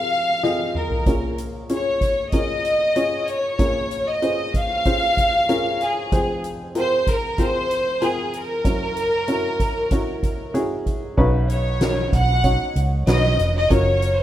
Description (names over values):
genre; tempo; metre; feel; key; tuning
piano-driven pop; 95 BPM; 4/4; straight; Bb minor; A4 = 437 Hz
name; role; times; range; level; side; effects
clear studio violin section; melody; 0.0-14.2 s; Ab4 to F#5; -21 LUFS; equal; none
warm upright piano; accompaniment; 0.0-14.2 s; F1 to Eb5; -25 LUFS; left 1 dB; none
soft-mallet drum kit; drums; 0.4-14.2 s; crash cymbal, hi-hat, kick drum, snare drum, toms; -24 LUFS; equal; none
vintage muted fingered electric bass; bass; 11.2-14.2 s; F1 to C#2; -20 LUFS; equal; none
room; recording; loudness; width
light reverb; rough home demo mix; -18 LUFS; side -12 dB against mid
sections
0.0-11.2 A section; 11.2-14.2 B section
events
drum fill 0.4-1.1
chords
0.0 Fm; 1.1 Bbm7; 6.1 Fm; 8.7 Gb7; 11.2 Badd9; 13.7 Gbmaj7